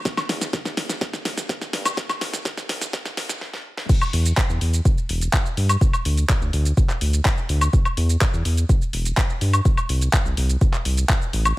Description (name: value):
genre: progressive house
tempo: 125 BPM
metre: 4/4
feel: straight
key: E minor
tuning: A4 = 440 Hz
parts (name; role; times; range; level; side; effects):
- deep house drum kit; drums; 0.1-11.6 s; crash cymbal, handclaps, hi-hat, shaker, snare drum, woodblock; -24 LUFS; equal; none
- electronic kick drum; drums; 0.1-11.2 s; none; -19 LUFS; equal; none
- round analog bass; bass; 0.3-11.5 s; E1 to G2; -21 LUFS; equal; sidechain pumping, high-pass filter
room: little or no reverb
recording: high-pass filter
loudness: -19 LUFS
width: side -18 dB against mid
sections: 0.0-3.9 A section; 3.9-11.6 B section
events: build-up 0.0-3.9; drum fill 0.0-3.4, 3.4-3.9; drop 3.9-11.6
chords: none